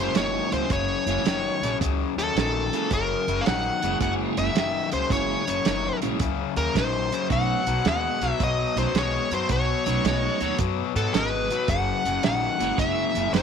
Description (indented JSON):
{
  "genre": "electric blues shuffle",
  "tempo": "109 BPM",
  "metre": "4/4",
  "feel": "swing 67% on 8ths",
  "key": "F# mixolydian",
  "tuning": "A4 = 440 Hz",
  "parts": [
    { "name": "dark smooth lead guitar", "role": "melody", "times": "0.0-13.4 s", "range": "A4 to F#5", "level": "-26 LUFS", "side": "equal", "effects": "overdrive" },
    { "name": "tonewheel organ", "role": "accompaniment", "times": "0.0-13.3 s", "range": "F#3 to E4", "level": "-32 LUFS", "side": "right 13 dB", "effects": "slow rotary speaker, overdrive, chorus vibrato" },
    { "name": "cranked stack guitar", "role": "riff", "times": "0.0-13.4 s", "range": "F#2 to G#3", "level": "-28 LUFS", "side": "left 13 dB", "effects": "overdrive" },
    { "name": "upright bass", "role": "bass", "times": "0.0-13.4 s", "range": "F#1 to G#2", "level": "-30 LUFS", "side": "equal", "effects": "none" },
    { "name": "warm soul drum kit", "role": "drums", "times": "0.1-13.4 s", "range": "hi-hat, kick drum, snare drum", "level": "-28 LUFS", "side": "right 6 dB", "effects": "none" }
  ],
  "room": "light reverb, small room ambience",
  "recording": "1960s-style stereo with parts hard left and right",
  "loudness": "-22 LUFS",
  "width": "side -7 dB against mid",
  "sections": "0.0-13.4 A section",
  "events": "none",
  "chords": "0.0 F#9; 7.3 B9; 11.7 F#9"
}